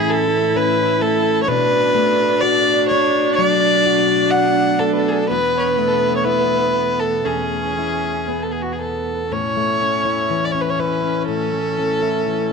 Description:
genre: celtic folk, Celtic slow air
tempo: 57-65 BPM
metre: 4/4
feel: rubato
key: A major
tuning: A4 = 440 Hz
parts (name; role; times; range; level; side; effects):
- warm fiddle; melody; 0.0-12.5 s; F#4 to F#5; -18 LUFS; equal; none
- warm viola; second line; 0.0-12.5 s; B3 to E4; -23 LUFS; right 13 dB; none
- fingerpicked plugged-in steel-string acoustic guitar; accompaniment; 0.0-12.5 s; E2 to F#4; -22 LUFS; left 13 dB; none
- ethereal airy pad; sustained chords; 0.0-9.3 s; E2 to D4; -28 LUFS; right 1 dB; ensemble chorus, built-in reverb, phaser
room: moderate plate reverb, RT60 3.5 s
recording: 1960s-style stereo with parts hard left and right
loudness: -15 LUFS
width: side -5 dB against mid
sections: 0.0-9.3 A section; 9.3-12.5 B section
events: none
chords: 0.0 A; 1.5 Bm7; 5.3 Esus4; 7.3 E; 9.3 A

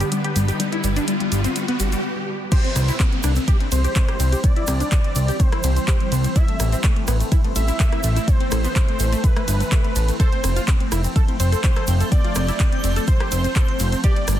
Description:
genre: progressive house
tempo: 125 BPM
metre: 4/4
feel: straight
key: C major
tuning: A4 = 441 Hz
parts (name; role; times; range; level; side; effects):
- shimmering ambient pad; sustained chords; 0.0-14.4 s; D3 to C4; -28 LUFS; equal; chorus, built-in reverb, phaser, sidechain pumping
- tight sequenced synth; arpeggios; 0.0-14.4 s; G3 to A4; -28 LUFS; left 2 dB; chorus, phaser, sidechain pumping, ping-pong delay
- fat analog bass; bass; 0.0-14.4 s; F1 to C2; -19 LUFS; equal; sidechain pumping
- pop drum kit; drums; 0.0-14.4 s; crash cymbal, handclaps, hi-hat, ride cymbal, rim click; -29 LUFS; equal; overdrive, sidechain pumping on hats, sidechain pumping on cymbals
- egg shaker; percussion; 0.0-14.4 s; none; -33 LUFS; right 5 dB; none
- riser and downlifter; sound effects; 0.0-6.4 s; none; -30 LUFS; right 1 dB; none
- wide unison lead; melody; 2.5-14.4 s; B4 to E5; -28 LUFS; equal; none
- electronic kick drum; drums; 2.5-14.1 s; none; -18 LUFS; equal; overdrive
- twinkling granular texture; texture; 10.9-14.4 s; G6; -35 LUFS; right 1 dB; built-in reverb, sidechain pumping
room: little or no reverb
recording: dense, heavily limited modern master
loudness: -17 LUFS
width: side -12 dB against mid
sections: 0.0-2.5 A section; 2.5-14.4 B section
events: build-up 0.0-2.5; riser 0.0-2.0; stop 2.0-2.5; drop 2.5-14.4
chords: 0.0 G; 2.5 C; 6.4 Am; 10.2 F

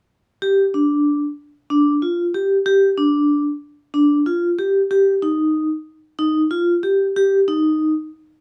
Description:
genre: progressive instrumental, progressive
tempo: 187 BPM (eighths)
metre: 7/8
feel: straight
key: unclear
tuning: A4 = 438 Hz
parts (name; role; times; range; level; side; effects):
- vibraphone with medium mallets; arpeggios; 0.4-7.9 s; D4 to G4; -18 LUFS; equal; none
room: moderate studio reverb, RT60 0.6 s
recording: none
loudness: -18 LUFS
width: mono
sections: 0.4-8.4 A section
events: none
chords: none

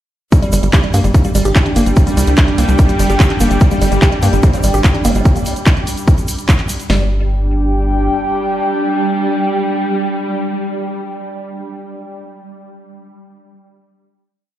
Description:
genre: psychedelic trance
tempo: 146 BPM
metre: 4/4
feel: straight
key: unclear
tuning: A4 = 440 Hz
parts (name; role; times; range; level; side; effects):
- swarming drone; sustained chords; 1.5-11.0 s; G3; -23 LUFS; right 1 dB; built-in reverb, phaser, sidechain pumping
- woody wave-folded pluck; riff; 0.3-7.1 s; G3 to G4; -19 LUFS; right 1 dB; chorus, auto-pan, sidechain pumping, digital delay
- techno drum kit; drums; 0.3-7.0 s; hi-hat, kick drum, snare drum; -11 LUFS; equal; none
- techno drum kit; drums; 0.3-6.9 s; handclaps, hi-hat; -22 LUFS; equal; none
- egg shaker; percussion; 0.3-6.9 s; none; -30 LUFS; left 1 dB; none
- warbly tape-like pad; texture; 0.9-10.9 s; D4 to G5; -20 LUFS; equal; chorus, built-in reverb, sidechain pumping
- tight sequencer bass; bass; 0.5-8.1 s; G1 to G2; -14 LUFS; equal; tube saturation
- vowel-sweep wobble bass; second line; 4.4-5.2 s; C4 to D4; -30 LUFS; right 3 dB; analog chorus, sidechain pumping, high-pass filter, digital delay
room: light reverb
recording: played on a big sound system in a bare room, stone room reverb, lossy compression artefacts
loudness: -11 LUFS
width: side -12 dB against mid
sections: 0.3-6.9 drop; 6.9-10.2 final chord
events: drop 0.3-6.9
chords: 0.3 G5

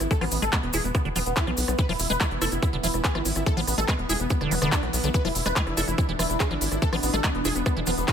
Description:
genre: psychedelic trance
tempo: 143 BPM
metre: 4/4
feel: straight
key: unclear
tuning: A4 = 440 Hz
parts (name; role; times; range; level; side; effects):
- wide unison lead; melody; 0.0-8.1 s; B3 to B4; -30 LUFS; equal; phaser, cassette tape, sidechain pumping, digital delay
- evolving wavetable pad; sustained chords; 0.0-8.1 s; E3 to D4; -33 LUFS; equal; chorus, built-in reverb, sidechain pumping
- tight sequencer bass; bass; 0.0-8.0 s; E1 to B1; -29 LUFS; equal; none
- techno drum kit; drums; 0.0-8.1 s; handclaps, hi-hat, rim click; -30 LUFS; right 1 dB; none
- cabasa; percussion; 0.0-8.1 s; none; -34 LUFS; left 4 dB; none
- liquid acid bass; riff; 0.1-7.9 s; D3 to E4; -30 LUFS; moving between left 5 dB and right 4 dB; chorus, auto-pan, sidechain pumping, digital delay
- electronic kick drum; drums; 0.1-8.1 s; none; -27 LUFS; equal; none
room: digital ambience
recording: none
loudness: -22 LUFS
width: side -8 dB against mid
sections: 0.0-8.1 A section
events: none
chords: 0.0 E5

